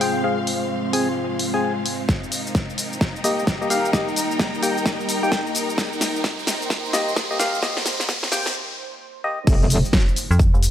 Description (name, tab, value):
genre	bass house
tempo	130 BPM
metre	4/4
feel	swing 62% on 16ths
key	unclear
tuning	A4 = 440 Hz
part	deep dark ambient pad	sustained chords	0.0-8.5 s	G3 to C5	-28 LUFS	equal	chorus, built-in reverb, sidechain pumping
part	percussive organ stab	stabs	0.0-9.4 s	Bb3 to Ab5	-25 LUFS	left 2 dB	chorus, cassette tape, sidechain pumping, digital delay
part	big-room dance drum kit	drums	0.0-10.7 s	cabasa, crash cymbal, hi-hat, snare drum	-25 LUFS	equal	none
part	riser and impact	sound effects	0.0-10.7 s	none	-31 LUFS	right 1 dB	none
part	clear symphonic string section	texture	0.0-8.5 s	Ab3 to C6	-29 LUFS	equal	sidechain pumping
part	electronic kick drum	drums	2.1-10.5 s	none	-20 LUFS	equal	none
part	metallic wobble bass	bass	9.5-9.8 s	F1	-18 LUFS	equal	chorus, tube saturation, sidechain pumping
part	metallic FM bass	bass	10.3-10.7 s	F1 to F2	-17 LUFS	equal	tube saturation, sidechain pumping
room	light reverb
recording	high-pass filter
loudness	-19 LUFS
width	side -10 dB against mid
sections	0.0-9.5 A section; 9.5-10.7 B section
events	build-up 0.0-9.5; riser 0.0-8.5; filter sweep on synth stab 0.0-9.5; filter sweep on ambient pad 0.0-9.5; filter sweep 0.0-9.5; drum fill 2.1-8.5; break 8.5-9.5; drop 9.5-10.7; impact 9.5-10.7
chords	0.0 Fm; 2.1 Eb; 9.5 N.C.